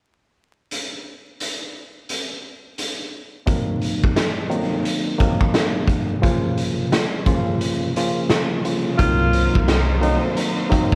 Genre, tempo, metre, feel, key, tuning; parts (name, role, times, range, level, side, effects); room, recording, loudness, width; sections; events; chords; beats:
hip hop, boom-bap hip-hop; 87 BPM; 4/4; swing 60% on 16ths; A4 = 435 Hz
raw garage drum kit; drums; 0.7-10.9 s; hi-hat, kick drum, snare drum; -23 LUFS; equal
tine electric piano; accompaniment; 3.5-10.9 s; Db3 to F4; -25 LUFS; equal; cassette tape, high-pass filter, low-pass filter, plate reverb
breathy tenor saxophone; melody; 9.0-10.2 s; Eb4 to F4; -26 LUFS; equal; high-pass filter, low-pass filter, plate reverb, delay
bright studio string section; stabs; 9.0-10.9 s; Gb3 to C5; -30 LUFS; equal; high-pass filter, low-pass filter, plate reverb, delay
upright bass; bass; 9.0-10.1 s; C2; -23 LUFS; equal
moderate small room ambience, RT60 0.5 s; worn, warbling old tape, cassette tape, vinyl crackle, warbly pitch drift; -21 LUFS; mono
0.7-3.5 A section; 3.5-9.0 B section; 9.0-10.9 C section
filter sweep 3.5-9.0; kick muted 7.6-9.0
0.7 N.C.; 3.5 Cm7b5; 6.2 Bbm/Db; 9.0 Cm7b5
| 0.71 1.40 2.09 2.78 | 3.47 4.16 4.85 5.54 | 6.23 6.92 7.61 8.30 | 8.99 9.68 10.37